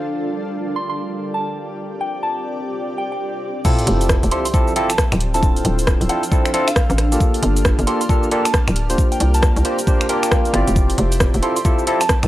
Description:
UK garage, two-step garage; 135 BPM; 4/4; swing 62% on 16ths; F major; A4 = 440 Hz
warm analog pad; sustained chords; 0.0-12.3 s; G3 to F6; -32 LUFS; equal; chorus, sidechain pumping
granular cloud pad; texture; 0.0-12.3 s; F3 to A5; -28 LUFS; equal; built-in reverb, sidechain pumping
soft synth bell; melody; 0.8-12.2 s; F5 to C6; -26 LUFS; right 1 dB; chorus, phaser
barky tine electric piano; stabs; 3.6-12.0 s; Bb3 to D5; -20 LUFS; equal; overdrive, wide subtle chorus, tape echo
electronic kick drum; drums; 3.6-12.2 s; -17 LUFS; equal; overdrive, studio reverb
garage drum kit; drums; 3.6-12.3 s; cabasa, crash cymbal, finger snaps, hi-hat, rim click; -22 LUFS; equal; overdrive, studio reverb
sub drop; sound effects; 3.6-5.4 s; -28 LUFS; equal
hollow knocking FM bass; bass; 3.9-12.3 s; D1 to C2; -18 LUFS; equal
little or no reverb; dry, gritty hardware recording; -16 LUFS; side -15 dB against mid
0.0-3.6 A section; 3.6-12.3 B section
drop 3.6-12.3; impact 3.6-5.4
0.1 Gm9; 1.9 C7sus4; 3.6 Fmaj9; 5.2 Dm9; 7.2 Gm9; 9.0 C7sus4; 10.8 Fmaj9
| 0.09 0.54 0.98 1.43 | 1.87 2.32 2.76 3.21 | 3.65 4.09 4.54 4.98 | 5.43 5.87 6.32 6.76 | 7.21 7.65 8.09 8.54 | 8.98 9.43 9.87 10.32 | 10.76 11.21 11.65 12.09

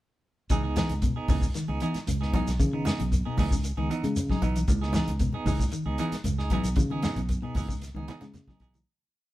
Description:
afrobeat; 115 BPM; 4/4; straight; C# minor; A4 = 441 Hz
electric guitar at the edge of break-up; arpeggios; 0.5-8.8 s; B2 to G#3; -33 LUFS; left 2 dB
clean electric guitar; stabs; 0.5-8.8 s; E3 to G#4; -33 LUFS; right 3 dB; tremolo
fingered electric bass; bass; 0.5-8.8 s; B1 to C#3; -30 LUFS; equal
warm soul drum kit; drums; 0.5-8.9 s; hi-hat, kick drum, snare drum; -28 LUFS; equal
congas; percussion; 0.5-8.9 s; -36 LUFS; right 2 dB
shekere; percussion; 0.5-8.9 s; -36 LUFS; left 1 dB
light reverb; band playing live in one room; -25 LUFS; side -16 dB against mid
0.5-8.9 groove
fade-out 6.8-8.9; drum fill 7.8-8.9
0.5 C#m9
| 0.51 1.03 1.55 2.08 | 2.60 3.12 3.64 4.16 | 4.69 5.21 5.73 6.25 | 6.78 7.30 7.83 8.35

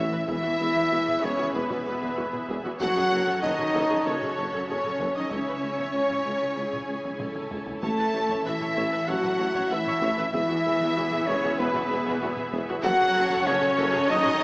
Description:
cinematic, epic orchestral film score; 96 BPM; 4/4; straight; A4 = 441 Hz
rich symphonic violin section; melody; 0.0-14.4 s; B4 to A5; -33 LUFS; equal
mellow silver concert flute; second line; 0.0-14.4 s; B4 to A5; -32 LUFS; equal
warm symphonic violin section; second line; 0.0-14.4 s; B4 to A5; -36 LUFS; equal
rich symphonic viola section; accompaniment; 0.0-14.4 s; F#4 to E5; -34 LUFS; equal
mellow French horn section; sustained chords; 0.0-14.4 s; B3 to A4; -28 LUFS; equal
rich studio string section; sustained chords; 0.0-14.4 s; A3 to G#5; -34 LUFS; equal
mellow trumpet section; stabs; 0.0-14.4 s; B4 to A5; -30 LUFS; equal
clear symphonic double bass section; bass; 0.0-14.4 s; A1 to F#2; -36 LUFS; equal
mellow tuba; bass; 0.0-14.4 s; E1 to C#2; -35 LUFS; equal
warm symphonic cello section; bass; 0.0-14.4 s; B2 to A3; -35 LUFS; equal
taiko ensemble; drums; 0.3-14.4 s; -43 LUFS; equal
wet scoring stage reverb, RT60 1.7 s; small speaker sound; -23 LUFS; side -25 dB against mid
0.0-14.4 A section
drum fill 7.2-7.8
0.3 E; 2.8 F#m; 5.3 C#m; 7.8 A; 10.3 E; 12.8 F#m
| 0.28 0.91 1.54 2.17 | 2.80 3.43 4.05 4.68 | 5.31 5.94 6.57 7.20 | 7.82 8.45 9.08 9.71 | 10.33 10.96 11.59 12.21 | 12.84 13.47 14.10

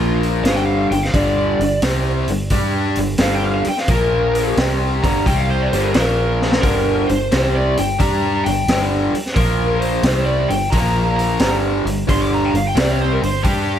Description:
blues rock power trio and southern rock; 88 BPM; 4/4; swing 67% on 8ths; G minor; A4 = 440 Hz
lead guitar through a small cranked amp; melody; 0.0-13.8 s; F4 to D6; -22 LUFS; right 1 dB; overdrive, slapback echo
raw garage guitar; riff; 0.0-13.8 s; G2 to G4; -19 LUFS; left 1 dB; overdrive
vintage muted fingered electric bass; bass; 0.0-13.8 s; G1 to G2; -22 LUFS; equal
raw garage drum kit; drums; 0.2-13.7 s; hi-hat, kick drum, snare drum; -21 LUFS; equal
light reverb; -15 LUFS; side -9 dB against mid
0.0-13.8 A section
lead electric guitar solo 0.0-13.8; drum fill 6.3-6.6
0.4 G5; 3.9 Bb5; 4.6 G5; 5.9 Bb5; 6.6 G5; 9.4 Bb5; 10.0 G5; 10.7 Bb5; 11.4 G5
0.45 | 1.14 1.82 2.51 3.20 | 3.88 4.57 5.26 5.94 | 6.63 7.31 7.99 8.68 | 9.36 10.04 10.72 11.40 | 12.08 12.76 13.44

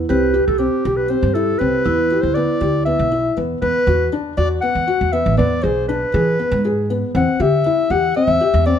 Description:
contemporary instrumental, chamber music in an uneven meter; 238 BPM (eighths); 7/8; straight; E minor; A4 = 440 Hz
vibraphone with medium mallets; second line; 0.0-3.3 s; E4 to G4; -21 LUFS; right 6 dB
felt-muted upright piano; arpeggios; 0.0-8.8 s; B3 to G#4; -20 LUFS; left 5 dB
upright bass; bass; 0.0-8.7 s; A1 to E3; -21 LUFS; right 1 dB
mellow clarinet; melody; 0.1-8.8 s; G4 to F#5; -19 LUFS; left 1 dB
light reverb; minimal, uncompressed stereo recording; -15 LUFS; side -8 dB against mid
0.0-3.6 A section; 3.6-8.8 B section
0.1 Cmaj7(no3); 1.9 Em7; 3.6 B5/E; 5.4 E; 7.1 Cadd9/E
| 0.10 0.35 0.60 0.85 1.10 1.35 1.61 | 1.86 2.11 2.36 2.62 2.87 3.12 3.37 | 3.62 3.87 4.13 4.38 4.63 4.88 5.13 | 5.38 5.64 5.89 6.14 6.39 6.64 6.90 | 7.15 7.40 7.65 7.90 8.16 8.41 8.66

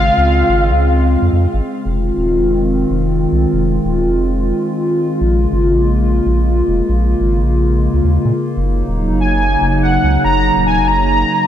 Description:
IDM; 143 BPM; 4/4; straight; F phrygian; A4 = 441 Hz
warm velvety synth lead; melody; 0.0-1.4, 9.2-11.5 s; F5 to Bb5; -16 LUFS; equal; chorus, ping-pong delay
hollow soft pad; sustained chords; 0.0-11.5 s; Db3 to F4; -16 LUFS; equal; chorus
round analog bass; bass; 0.0-11.2 s; Eb1 to Bb2; -16 LUFS; equal
wet lush hall reverb, RT60 2.7 s; dreamy mix soaked in reverb; -12 LUFS; side -10 dB against mid
0.0-1.9 A section; 1.9-11.5 B section
0.0 Dbmaj7; 1.9 Fm7; 5.2 Bbm7; 8.6 Gb6
| 0.17 0.59 1.01 1.43 | 1.85 2.27 2.69 3.11 | 3.53 3.95 4.37 4.79 | 5.21 5.63 6.05 6.47 | 6.89 7.31 7.73 8.15 | 8.57 8.99 9.41 9.82 | 10.24 10.66 11.08

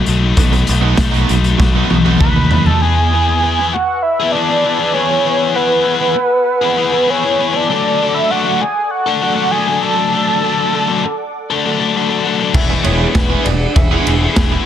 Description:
indie rock; 99 BPM; 4/4; straight; E mixolydian; A4 = 440 Hz
biting overdriven guitar; riff; 0.0-14.7 s; E3 to A4; -16 LUFS; left 6 dB
growling picked electric bass; bass; 0.1-2.7, 12.5-14.6 s; E1 to D#2; -16 LUFS; equal; overdrive
raw garage drum kit; drums; 0.1-2.8, 12.5-14.5 s; crash cymbal, hi-hat, kick drum, ride cymbal, snare drum, toms; -14 LUFS; equal
distorted electric guitar; riff; 0.5-2.4, 12.7-14.6 s; B2 to G#4; -21 LUFS; right 13 dB; overdrive, lush chorus
lead with added fifth; melody; 2.2-11.6 s; B4 to B5; -15 LUFS; right 1 dB; chorus
hollow soft pad; sustained chords; 3.4-14.7 s; G#4 to E6; -27 LUFS; right 2 dB; ensemble chorus
bright tine electric piano; second line; 12.6-14.7 s; B4 to E5; -26 LUFS; left 5 dB; medium stereo tremolo
light reverb, small room ambience; dense, heavily limited modern master; -12 LUFS; side -10 dB against mid
0.0-2.8 A section; 2.8-14.7 B section
drum fill 1.6-2.8
0.0 B7; 2.8 Eadd9; 7.7 D; 12.6 Eadd9
| 0.38 0.99 1.60 2.21 | 2.82 3.43 4.04 4.65 | 5.25 5.86 6.47 7.08 | 7.69 8.29 8.90 9.51 | 10.12 10.73 11.34 11.95 | 12.55 13.16 13.77 14.38

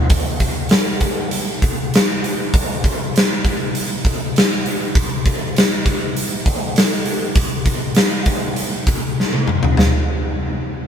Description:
rock; 99 BPM; 4/4; straight
huge arena drum kit; drums; 0.1-9.9 s; hi-hat, kick drum, snare drum, toms; -16 LUFS; equal
light reverb; band playing live in one room; -16 LUFS; side -8 dB against mid
0.0-9.8 A section; 9.8-10.9 B section
drum fill 9.2-9.8
| 0.12 0.72 1.33 1.93 | 2.54 3.14 3.75 4.35 | 4.96 5.56 6.16 6.77 | 7.37 7.98 8.58 9.18 | 9.79

